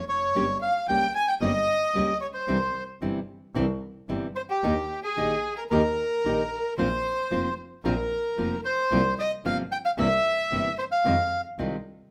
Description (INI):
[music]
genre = tango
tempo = 112 BPM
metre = 4/4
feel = rubato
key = unclear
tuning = A4 = 440 Hz
[part]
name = bandoneon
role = melody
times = 0.0-11.4 s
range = G4 to Ab5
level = -29 LUFS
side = equal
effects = none
[part]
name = warm violin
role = second line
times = 0.0-11.4 s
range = G4 to Ab5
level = -33 LUFS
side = equal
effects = none
[part]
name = rich double bass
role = bass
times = 0.0-11.8 s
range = F1 to F2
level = -34 LUFS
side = equal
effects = none
[part]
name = nylon-string guitar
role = accompaniment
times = 0.4-11.8 s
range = C3 to G4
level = -32 LUFS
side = equal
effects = none
[sound]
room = moderate large studio reverb, RT60 1.0 s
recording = none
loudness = -26 LUFS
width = mono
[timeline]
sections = 0.0-12.1 A section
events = none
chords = 0.4 Gdim; 2.5 C; 4.6 Eb; 6.8 Bbsus2; 8.9 C7sus4; 10.0 C7; 11.0 Fm7